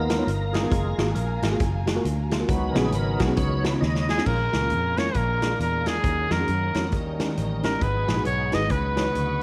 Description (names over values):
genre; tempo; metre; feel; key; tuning
uptempo gospel; 135 BPM; 4/4; swing 61% on 8ths; unclear; A4 = 440 Hz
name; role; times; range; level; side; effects
tonewheel organ; sustained chords; 0.0-9.4 s; F#3 to D#5; -33 LUFS; equal; fast rotary speaker, chorus vibrato
warm studio string section; sustained chords; 0.0-9.4 s; C#5 to C#6; -41 LUFS; equal; none
fingered electric bass; bass; 0.0-9.4 s; F#1 to F#2; -29 LUFS; equal; none
mellow tine electric piano; accompaniment; 0.1-9.4 s; G#2 to C#5; -32 LUFS; equal; none
swinging big-band drum kit; drums; 0.1-9.3 s; crash cymbal, hi-hat, kick drum, snare drum; -30 LUFS; equal; none
clear trumpet; melody; 4.1-9.4 s; G#4 to D#5; -28 LUFS; equal; none
room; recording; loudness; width
light reverb, studio reverb; none; -24 LUFS; mono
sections
0.0-4.3 A section; 4.3-9.4 B section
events
tonewheel organ solo 0.0-4.3; drum fill 3.8-4.3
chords
0.0 C#13; 0.7 F#maj9; 2.5 C#7sus4; 3.4 C#9sus4; 4.3 A#m7; 5.2 A#7; 6.0 D#m7; 6.9 D#7; 7.8 G#m7; 8.7 C#9sus4